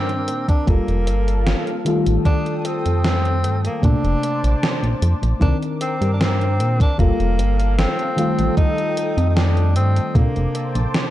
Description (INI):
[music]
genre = vaporwave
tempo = 76 BPM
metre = 4/4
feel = straight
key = unclear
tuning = A4 = 440 Hz
[part]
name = warm tenor saxophone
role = melody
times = 0.0-10.9 s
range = Bb3 to Eb4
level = -25 LUFS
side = equal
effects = vintage 12-bit sampler grit, tape echo
[part]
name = mellow FM electric piano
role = accompaniment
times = 0.0-11.1 s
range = C3 to Bb4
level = -24 LUFS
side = left 2 dB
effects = lush chorus
[part]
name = lush unison pad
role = sustained chords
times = 0.0-11.1 s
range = A4 to Eb6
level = -31 LUFS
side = right 1 dB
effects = chorus, phaser
[part]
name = chorused synth bass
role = bass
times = 0.0-10.9 s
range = F1 to Bb2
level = -18 LUFS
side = equal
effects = none
[part]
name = gated 80s digital drum machine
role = drums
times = 0.1-11.1 s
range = hi-hat, snare drum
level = -24 LUFS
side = equal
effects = gated reverb, gated reverb snare
[part]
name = electronic kick drum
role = drums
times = 0.5-10.3 s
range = none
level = -17 LUFS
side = equal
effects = none
[sound]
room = light reverb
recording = dark, warm production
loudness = -16 LUFS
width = side -14 dB against mid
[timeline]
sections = 0.0-11.1 A section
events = none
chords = 0.0 Cm9; 0.7 Gm9; 1.9 F9/A; 3.8 Bbmaj9; 5.4 Cm9; 7.0 Gm9; 8.2 F9/A; 10.2 Bbmaj9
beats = 0.68 1.47 | 2.26 3.05 3.84 4.63 | 5.42 6.21 7.00 7.78 | 8.57 9.36 10.15 10.94